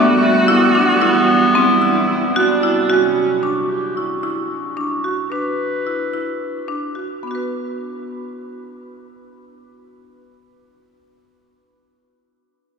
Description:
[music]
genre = contemporary instrumental, chamber music in an uneven meter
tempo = 221 BPM (eighths)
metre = 7/8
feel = straight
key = B minor from 3.4 s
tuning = A4 = 440 Hz
[part]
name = clear clarinet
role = melody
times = 0.0-6.7 s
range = A3 to B4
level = -19 LUFS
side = equal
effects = none
[part]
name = rich viola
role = second line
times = 0.0-3.4 s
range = C#4 to F#4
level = -21 LUFS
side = right 1 dB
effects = none
[part]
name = deep dark ambient pad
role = sustained chords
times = 0.0-3.4 s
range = C3 to F#4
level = -24 LUFS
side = right 2 dB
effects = chorus, built-in reverb
[part]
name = marimba with hard mallets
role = arpeggios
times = 0.0-11.2 s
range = B3 to B4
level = -19 LUFS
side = right 1 dB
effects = none
[sound]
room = wet cathedral reverb, RT60 6.1 s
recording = recorded in a church or concert hall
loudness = -15 LUFS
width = side -5 dB against mid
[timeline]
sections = 0.0-3.4 A section; 3.4-7.2 B section; 7.2-11.1 C section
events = slowing down 3.4-7.2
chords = 0.0 Emadd9; 1.6 C; 2.9 F#7; 3.4 Bm

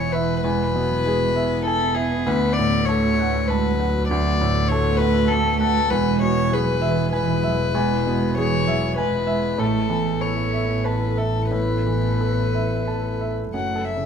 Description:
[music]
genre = neoclassical piano and strings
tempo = 98 BPM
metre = 3/4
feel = rubato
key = unclear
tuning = A4 = 440 Hz
[part]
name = rich violin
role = melody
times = 0.0-14.1 s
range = G#4 to F#5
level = -24 LUFS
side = left 6 dB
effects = none
[part]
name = dark cello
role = second line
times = 0.0-14.1 s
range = E3 to B3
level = -26 LUFS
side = right 8 dB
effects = none
[part]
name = felt-muted upright piano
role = accompaniment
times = 0.0-14.1 s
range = D2 to A5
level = -26 LUFS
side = right 2 dB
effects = none
[part]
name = deep dark ambient pad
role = sustained chords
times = 0.0-14.1 s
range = G#3 to C#5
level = -34 LUFS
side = equal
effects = chorus, built-in reverb
[part]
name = concert harp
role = arpeggios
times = 0.0-14.1 s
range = D4 to B5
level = -32 LUFS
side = right 1 dB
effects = none
[part]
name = dark double bass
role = bass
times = 0.0-14.1 s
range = E1 to D2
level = -25 LUFS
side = equal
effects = none
[sound]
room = moderate large studio reverb, RT60 1.2 s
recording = minimal, uncompressed stereo recording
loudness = -19 LUFS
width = side -7 dB against mid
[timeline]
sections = 0.0-13.5 A section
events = none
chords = 0.0 E; 2.3 D6; 5.9 E; 9.6 Asus2; 13.5 F#m7

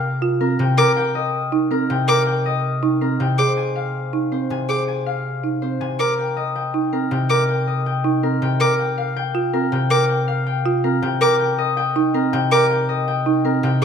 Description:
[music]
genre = classical, minimalist pattern music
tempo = 322 BPM (eighths)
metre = 7/8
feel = straight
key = Eb major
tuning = A4 = 441 Hz
[part]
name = concert harp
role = melody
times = 0.0-13.8 s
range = Bb4 to Ab5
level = -23 LUFS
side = left 8 dB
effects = none
[part]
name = concert harp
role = accompaniment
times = 0.0-13.8 s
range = C3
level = -23 LUFS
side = equal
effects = none
[part]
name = folk marimba with medium mallets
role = arpeggios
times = 0.2-13.8 s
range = C4 to Bb4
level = -21 LUFS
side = right 5 dB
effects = none
[part]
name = rich violin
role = arpeggios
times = 0.8-13.8 s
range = D6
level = -23 LUFS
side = left 1 dB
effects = none
[sound]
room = wet recital hall reverb, RT60 1.6 s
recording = none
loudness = -17 LUFS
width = side -7 dB against mid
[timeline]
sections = 0.0-13.8 A section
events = none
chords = 0.0 Bbsus2; 0.8 Eb6; 3.4 Fm7; 6.0 Eb6; 8.6 Bbsus2; 11.2 Eb6

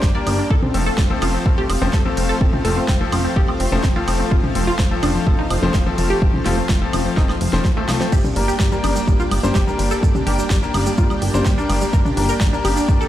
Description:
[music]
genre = progressive house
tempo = 126 BPM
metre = 4/4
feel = straight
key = unclear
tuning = A4 = 440 Hz
[part]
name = supersaw pad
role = sustained chords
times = 0.0-13.1 s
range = A3 to G5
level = -27 LUFS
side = right 1 dB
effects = sidechain pumping
[part]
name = wide unison pluck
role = arpeggios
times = 0.0-13.1 s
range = F3 to D5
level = -24 LUFS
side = right 1 dB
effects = sidechain pumping, ping-pong delay
[part]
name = bright concert grand piano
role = stabs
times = 0.0-13.0 s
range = F3 to C5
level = -24 LUFS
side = left 4 dB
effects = sidechain pumping, ping-pong delay
[part]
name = plucky analog bass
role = bass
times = 0.0-13.0 s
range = F1 to C2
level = -23 LUFS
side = equal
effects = sidechain pumping
[part]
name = deep house drum kit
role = drums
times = 0.0-12.7 s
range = crash cymbal, hi-hat, snare drum, woodblock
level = -27 LUFS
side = right 1 dB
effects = sidechain pumping on cymbals, studio reverb, sidechain pumping on hats, sidechain pumping on perc
[part]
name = electronic kick drum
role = drums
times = 0.0-13.0 s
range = none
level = -17 LUFS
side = equal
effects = overdrive, studio reverb
[part]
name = electronic toms and congas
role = percussion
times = 0.6-12.7 s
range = none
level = -28 LUFS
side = left 1 dB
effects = sidechain pumping on toms, studio reverb, sidechain pumping on perc
[part]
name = tube shaker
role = percussion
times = 8.1-13.1 s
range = none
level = -34 LUFS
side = right 3 dB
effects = none
[sound]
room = little or no reverb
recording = played on a big sound system in a bare room, stone room reverb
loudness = -16 LUFS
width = side -12 dB against mid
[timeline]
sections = 0.0-13.1 A section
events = drum fill 7.2-8.1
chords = 0.0 Gm; 0.5 F; 8.1 Gm

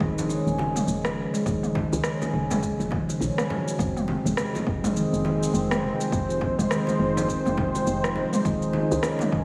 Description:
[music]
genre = organic downtempo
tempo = 103 BPM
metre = 4/4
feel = swing 60% on 16ths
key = unclear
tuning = A4 = 441 Hz
[part]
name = handpan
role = arpeggios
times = 0.0-9.4 s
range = C3 to Db4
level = -28 LUFS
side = equal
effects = low-pass filter, diffuse ambient delay
[part]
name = woody FM bass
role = bass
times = 0.0-9.4 s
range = Eb1 to Db2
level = -33 LUFS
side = equal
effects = none
[part]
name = electronic kick drum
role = drums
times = 0.0-9.4 s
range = none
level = -33 LUFS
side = equal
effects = overdrive
[part]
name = organic electronic drum kit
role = drums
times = 0.2-9.3 s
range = rim click, shaker, toms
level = -33 LUFS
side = equal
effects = overdrive
[part]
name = congas and bongos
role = percussion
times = 0.2-9.3 s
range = none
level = -37 LUFS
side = equal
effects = none
[part]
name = warm analog pad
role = sustained chords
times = 3.8-9.4 s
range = Ab3 to C5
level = -31 LUFS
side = equal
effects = chorus, sidechain pumping
[sound]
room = wet lush hall reverb, RT60 1.8 s, digital ambience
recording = dreamy mix soaked in reverb, small room ambience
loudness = -25 LUFS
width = mono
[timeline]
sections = 0.0-9.4 A section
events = none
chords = 0.0 Eb7(no3); 3.8 Fm7; 8.5 Ebsus2

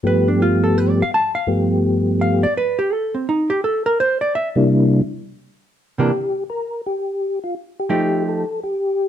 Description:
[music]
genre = jazz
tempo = 168 BPM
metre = 4/4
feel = swing 65% on 8ths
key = unclear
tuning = A4 = 440 Hz
[part]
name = percussive tonewheel organ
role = melody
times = 0.0-9.1 s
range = G2 to Bb4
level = -17 LUFS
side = left 1 dB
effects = slow rotary speaker, chorus vibrato
[part]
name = hollow-body jazz guitar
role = accompaniment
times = 0.1-8.4 s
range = C3 to A5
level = -18 LUFS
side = right 2 dB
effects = none
[sound]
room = moderate studio reverb, RT60 0.8 s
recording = dark, warm production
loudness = -17 LUFS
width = side -10 dB against mid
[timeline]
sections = 0.0-5.8 A section; 5.8-9.1 A section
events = hollow-body jazz guitar solo 0.0-5.8; tonewheel organ solo 5.8-9.1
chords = 0.0 G9; 2.9 N.C.; 4.3 C9; 5.0 N.C.; 5.8 C9; 7.2 F9

